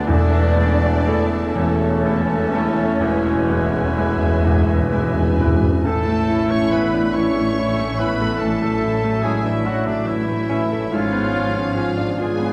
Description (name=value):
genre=classical, romantic movement for piano and orchestra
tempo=41-48 BPM (dotted quarters)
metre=12/8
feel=rubato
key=A major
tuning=A4 = 442 Hz
part: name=clear grand piano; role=melody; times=0.0-12.5 s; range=E1 to B4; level=-24 LUFS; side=equal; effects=none
part: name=rich studio violin section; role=melody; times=0.0-12.5 s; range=D5 to C#6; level=-37 LUFS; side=equal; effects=none
part: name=flute section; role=second line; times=0.0-12.0 s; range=C#5 to E#6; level=-35 LUFS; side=equal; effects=none
part: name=rich studio violin section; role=second line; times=0.0-12.5 s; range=C#4 to D5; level=-34 LUFS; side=equal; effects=none
part: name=warm clarinet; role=second line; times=0.0-12.5 s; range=A4 to E5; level=-34 LUFS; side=equal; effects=none
part: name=warm oboe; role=second line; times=0.0-12.5 s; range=D4 to A5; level=-34 LUFS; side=equal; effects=none
part: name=dark studio viola section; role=accompaniment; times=0.0-12.5 s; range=E3 to E5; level=-31 LUFS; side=equal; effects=none
part: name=warm bassoon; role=accompaniment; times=0.0-11.9 s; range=E3 to C#4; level=-34 LUFS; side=equal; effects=none
part: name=mellow French horn section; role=sustained chords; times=0.0-12.5 s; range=D3 to C#4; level=-30 LUFS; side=equal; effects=none
part: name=clear trumpet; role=stabs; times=0.0-12.5 s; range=C#4 to C#5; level=-32 LUFS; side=equal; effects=none
part: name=rich studio cello section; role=bass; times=0.0-12.5 s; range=G#2 to D4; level=-34 LUFS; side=equal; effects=none
part: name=warm trombone section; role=sustained chords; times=0.1-5.5 s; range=A2 to A3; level=-34 LUFS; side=equal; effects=none
part: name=dark studio double bass section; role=bass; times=0.1-12.5 s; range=G#1 to E2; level=-28 LUFS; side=equal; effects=none
part: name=mellow tuba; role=bass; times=0.1-5.7 s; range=E1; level=-30 LUFS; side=equal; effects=none
part: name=timpani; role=percussion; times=0.1-7.1 s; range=E2 to A2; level=-24 LUFS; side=equal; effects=none
room=wet scoring stage reverb, RT60 2.0 s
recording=dark, warm production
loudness=-19 LUFS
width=mono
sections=0.0-5.8 A section; 5.8-12.5 B section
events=timpani fill 3.0-5.8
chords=0.1 A/E; 3.0 E; 5.8 A; 10.9 C#7/G#